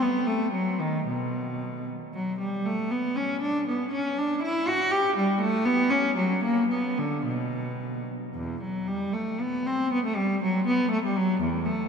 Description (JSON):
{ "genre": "classical, baroque-style suite movement for unaccompanied cello", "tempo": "106-123 BPM", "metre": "3/4", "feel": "rubato", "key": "B minor", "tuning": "A4 = 443 Hz", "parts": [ { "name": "rich cello", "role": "solo", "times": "0.0-11.9 s", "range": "E2 to G4", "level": "-24 LUFS", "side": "equal", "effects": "none" } ], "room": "wet cathedral reverb, RT60 6.2 s", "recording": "recorded in a church or concert hall", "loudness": "-24 LUFS", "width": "side -6 dB against mid", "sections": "0.0-8.4 A section; 8.4-11.9 A section", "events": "none", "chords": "none", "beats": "0.02 | 0.54 1.07 1.61 | 2.15 2.66 3.17 | 3.67 4.16 4.65 | 5.15 5.64 6.17 | 6.72 7.27 7.81 | 8.36 8.89 9.41 | 9.92 10.42 10.91 | 11.40" }